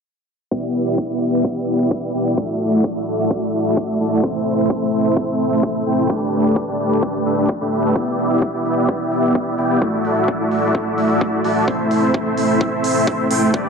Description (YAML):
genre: EDM, festival progressive house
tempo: 129 BPM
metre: 4/4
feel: straight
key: E minor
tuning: A4 = 439 Hz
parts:
  - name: dense compressed supersaw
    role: riff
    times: 0.5-13.7 s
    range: A3 to A5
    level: -16 LUFS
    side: equal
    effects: vintage 12-bit sampler grit, sidechain pumping, low-pass filter, digital delay
  - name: electronic kick drum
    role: drums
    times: 0.5-13.6 s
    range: none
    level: -23 LUFS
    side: left 1 dB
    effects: overdrive, high-pass filter on kick
  - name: electronic hi-hat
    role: drums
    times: 8.2-13.4 s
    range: none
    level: -31 LUFS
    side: right 4 dB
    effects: overdrive
room: moderate lush hall reverb, RT60 2.2 s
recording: low-pass filter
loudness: -16 LUFS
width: side -5 dB against mid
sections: 0.5-13.7 A section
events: filter sweep 0.5-13.7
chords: 0.5 Em7; 2.4 Dadd9; 4.2 Am; 6.1 Gadd9; 8.0 Em7; 9.8 Dadd9; 11.7 Am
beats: | 0.52 0.98 1.45 1.91 | 2.38 2.84 3.31 3.77 | 4.24 4.70 5.17 5.63 | 6.10 6.56 7.03 7.49 | 7.96 8.42 8.89 9.35 | 9.82 10.28 10.75 11.21 | 11.68 12.14 12.61 13.07 | 13.54